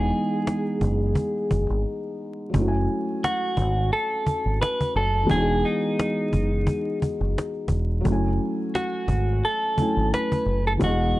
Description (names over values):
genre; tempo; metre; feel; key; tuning
lo-fi hip hop; 87 BPM; 4/4; swing 56% on 16ths; F# dorian; A4 = 436 Hz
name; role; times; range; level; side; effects
clean electric guitar; melody; 0.0-11.2 s; D#4 to B4; -26 LUFS; equal; low-pass filter, plate reverb
felt-muted upright piano; accompaniment; 0.0-11.2 s; E3 to G#5; -26 LUFS; equal; cassette tape, low-pass filter, plate reverb
deep dub fingered electric bass; bass; 0.0-11.1 s; E1 to G#1; -24 LUFS; equal; none
cajon; drums; 0.1-11.2 s; none; -26 LUFS; equal; vintage 12-bit sampler grit
room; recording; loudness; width
light reverb; dry, gritty hardware recording, vinyl crackle; -21 LUFS; side -17 dB against mid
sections
0.0-2.5 A section; 2.5-11.2 B section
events
break 1.8-2.5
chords
0.0 Emaj7; 2.5 F#m9; 5.3 Emaj7; 8.1 F#m9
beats
0.47 1.16 1.84 | 2.53 3.22 3.91 4.60 | 5.29 5.98 6.67 7.36 | 8.05 8.74 9.43 10.12 | 10.81